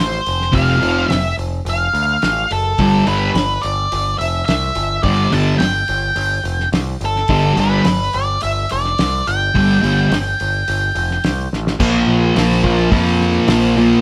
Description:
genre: garage rock duo or trio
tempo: 107 BPM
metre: 4/4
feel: straight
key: unclear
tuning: A4 = 440 Hz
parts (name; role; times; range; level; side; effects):
- octave-fuzz lead guitar; melody; 0.0-11.5 s; A4 to A5; -21 LUFS; equal; distortion
- growling picked electric bass; bass; 0.0-13.9 s; F1 to F2; -23 LUFS; equal; overdrive
- cloth-damped thuddy drum kit; drums; 0.3-13.6 s; crash cymbal, hi-hat, kick drum, snare drum; -25 LUFS; equal; none
- thick fuzz guitar; riff; 0.5-14.0 s; F2 to Bb3; -16 LUFS; equal; distortion
room: light reverb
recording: band playing live in one room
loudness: -16 LUFS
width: mono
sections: 0.0-11.8 A section; 11.8-14.0 B section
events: drum fill 11.5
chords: 0.0 F; 2.8 G5; 11.8 Bb5

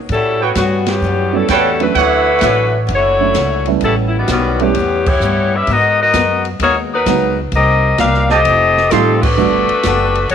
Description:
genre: jazz, big band swing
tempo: 129 BPM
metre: 4/4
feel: swing 68% on 8ths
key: unclear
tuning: A4 = 440 Hz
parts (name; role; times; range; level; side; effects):
- mellow saxophone section; melody; 0.1-10.3 s; D#3 to E#5; -14 LUFS; left 2 dB; none
- picked swing-style acoustic guitar; accompaniment; 0.1-10.3 s; A2 to A#4; -23 LUFS; left 12 dB; none
- upright bass; bass; 0.1-10.3 s; F1 to A2; -19 LUFS; equal; none
- open jazz drum kit; drums; 0.1-10.3 s; crash cymbal, hi-hat, kick drum, ride cymbal, snare drum; -23 LUFS; right 1 dB; none
- mellow trumpet section; stabs; 0.4-3.1, 8.3-9.1 s; E4 to C6; -17 LUFS; right 11 dB; none
- dark baby grand piano; accompaniment; 1.3-9.7 s; D3 to F#4; -18 LUFS; right 13 dB; none
room: moderate plate reverb, RT60 1.3 s, small room ambience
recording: 1960s-style stereo with parts hard left and right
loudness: -11 LUFS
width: side -8 dB against mid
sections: 0.0-10.3 A section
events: band accent 0.8, 5.0, 9.1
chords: 0.1 A13; 2.0 Dmaj9; 3.8 A9; 5.7 G#m9; 7.5 Cm7; 8.5 F9; 9.4 Gmaj9

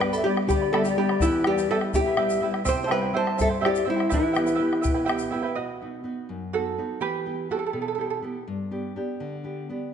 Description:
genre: andean folk, Andean ensemble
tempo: 83 BPM (dotted quarters)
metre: 6/8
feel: straight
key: E minor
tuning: A4 = 439 Hz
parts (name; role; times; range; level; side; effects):
- hollow-body jazz guitar; melody; 0.0-5.1 s; E4 to C5; -25 LUFS; left 1 dB; none
- bright reedy large quena; second line; 0.0-5.1 s; B4 to A5; -30 LUFS; left 1 dB; none
- charango; accompaniment; 0.0-8.2 s; E4 to B5; -29 LUFS; right 7 dB; none
- nylon-string guitar; accompaniment; 0.0-9.9 s; E2 to G4; -30 LUFS; left 1 dB; none
- bombo; percussion; 0.0-5.2 s; none; -29 LUFS; left 1 dB; none
- tube shaker; percussion; 0.1-5.3 s; none; -41 LUFS; left 6 dB; none
room: wet recital hall reverb, RT60 1.8 s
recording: nothing above 10.3 kHz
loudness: -23 LUFS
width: side -8 dB against mid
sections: 0.0-5.6 A section; 5.6-9.9 B section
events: charango solo 5.6-9.9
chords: 0.0 G; 1.2 Em; 2.7 C; 4.1 Em; 5.6 B; 7.0 Em; 8.5 G

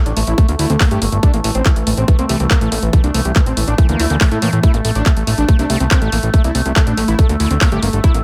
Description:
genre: psychedelic trance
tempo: 141 BPM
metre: 4/4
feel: straight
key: A phrygian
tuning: A4 = 440 Hz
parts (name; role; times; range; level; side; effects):
- unison lead; melody; 0.0-8.2 s; E3 to G4; -25 LUFS; equal; phaser, cassette tape, sidechain pumping, dub echo
- overtone-sweeping drone; sustained chords; 0.0-8.2 s; A3; -27 LUFS; equal; chorus, built-in reverb, sidechain pumping
- fat analog bass; bass; 0.1-8.2 s; G1 to A2; -20 LUFS; equal; none
- techno drum kit; drums; 0.1-8.2 s; handclaps, hi-hat; -24 LUFS; equal; none
- overdriven acid bass; riff; 0.2-8.2 s; A3 to C4; -26 LUFS; equal; distortion, cassette tape, sidechain pumping, delay
- electronic kick drum; drums; 0.4-8.1 s; none; -14 LUFS; equal; none
room: little or no reverb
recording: none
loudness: -14 LUFS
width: mono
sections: 0.0-8.2 A section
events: none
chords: 0.0 A5

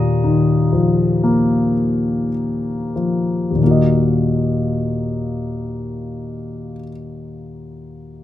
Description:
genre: classical, lyrical solo piano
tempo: 45-65 BPM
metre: 4/4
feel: rubato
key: Eb minor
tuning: A4 = 440 Hz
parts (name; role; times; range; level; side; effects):
- dark grand piano; solo; 0.0-8.2 s; Eb2 to Eb6; -17 LUFS; left 2 dB; none
room: little or no reverb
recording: close, detailed microphones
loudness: -16 LUFS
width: side -12 dB against mid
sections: 0.0-3.6 A section; 3.6-8.2 B section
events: slowing down 0.0-3.6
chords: 0.0 Ebsus2; 3.6 Ebm

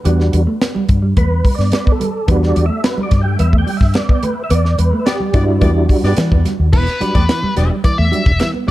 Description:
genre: funk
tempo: 108 BPM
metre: 4/4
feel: straight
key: E minor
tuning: A4 = 440 Hz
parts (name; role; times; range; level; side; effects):
- percussive tonewheel organ; stabs; 0.0-8.7 s; E3 to G5; -20 LUFS; right 1 dB; chorus vibrato, fast rotary speaker, tape echo
- mellow electric guitar; riff; 0.1-8.7 s; G3 to B3; -24 LUFS; right 4 dB; none
- vintage muted fingered electric bass; bass; 0.1-8.7 s; E1 to E3; -15 LUFS; equal; none
- tight funk drum kit; drums; 0.1-8.7 s; crash cymbal, hi-hat, kick drum, snare drum; -15 LUFS; equal; none
- cowbell; percussion; 0.1-8.5 s; none; -28 LUFS; left 5 dB; none
- congas; percussion; 0.3-8.7 s; none; -27 LUFS; right 2 dB; none
- warm horn section; second line; 5.1-7.7 s; B3 to D5; -26 LUFS; left 3 dB; none
- octave-fuzz lead guitar; melody; 6.7-8.7 s; B4 to E5; -20 LUFS; left 2 dB; distortion
room: studio reverb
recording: dark, warm production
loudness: -12 LUFS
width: side -16 dB against mid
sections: 0.0-6.7 A section; 6.7-8.7 B section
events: tonewheel organ solo 0.0-6.7; band accent 4.5-6.7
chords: 0.0 Em9

